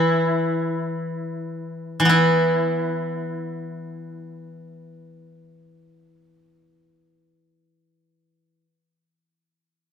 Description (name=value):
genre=chinese traditional, Chinese solo plucked strings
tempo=free time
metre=none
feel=none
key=unclear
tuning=A4 = 440 Hz
part: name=steel-string zither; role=solo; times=0.0-8.6 s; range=E3 to E4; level=-21 LUFS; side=equal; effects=none
room=moderate recital hall reverb, RT60 1.7 s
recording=none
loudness=-20 LUFS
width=side -7 dB against mid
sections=0.0-2.1 A section; 2.1-7.8 B section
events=slowing down 0.0-2.1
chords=none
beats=free time